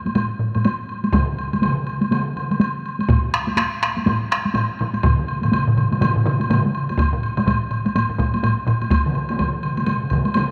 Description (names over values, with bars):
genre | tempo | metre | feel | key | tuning
japanese traditional, taiko drum ensemble | 123 BPM | 4/4 | swing 60% on 16ths | none | none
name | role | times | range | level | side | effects
taiko ensemble | percussion | 0.1-10.5 s | none | -26 LUFS | equal | none
woodblock | percussion | 0.1-10.5 s | none | -29 LUFS | equal | none
taiko ensemble | percussion | 0.2-8.8 s | none | -25 LUFS | equal | none
solo taiko drums | percussion | 1.1-10.2 s | none | -26 LUFS | equal | none
taiko ensemble | percussion | 1.1-10.5 s | none | -26 LUFS | equal | none
room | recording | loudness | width
wet echo chamber reverb, RT60 2.4 s | none | -20 LUFS | mono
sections
0.0-7.0 A section; 7.0-10.5 B section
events
none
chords
none